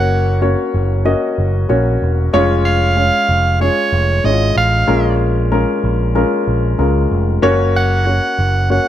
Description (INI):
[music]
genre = piano-driven pop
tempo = 94 BPM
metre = 4/4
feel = straight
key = unclear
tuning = A4 = 441 Hz
[part]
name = clear soprano saxophone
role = melody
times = 0.0-8.9 s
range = Db5 to Gb5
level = -17 LUFS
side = right 3 dB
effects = none
[part]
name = dark upright piano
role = accompaniment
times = 0.0-8.9 s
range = Bb2 to Eb5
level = -16 LUFS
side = left 2 dB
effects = none
[part]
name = picked electric bass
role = bass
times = 0.0-8.8 s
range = E1 to Db2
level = -16 LUFS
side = right 1 dB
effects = none
[sound]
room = light reverb, studio reverb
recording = none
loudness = -12 LUFS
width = side -11 dB against mid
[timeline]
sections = 0.0-8.9 A section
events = none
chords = 0.0 Gb; 2.3 Db/F; 4.9 Bbm7; 7.4 Gb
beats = 0.42 1.06 1.69 | 2.33 2.97 3.60 4.24 | 4.88 5.52 6.15 6.79 | 7.43 8.06 8.70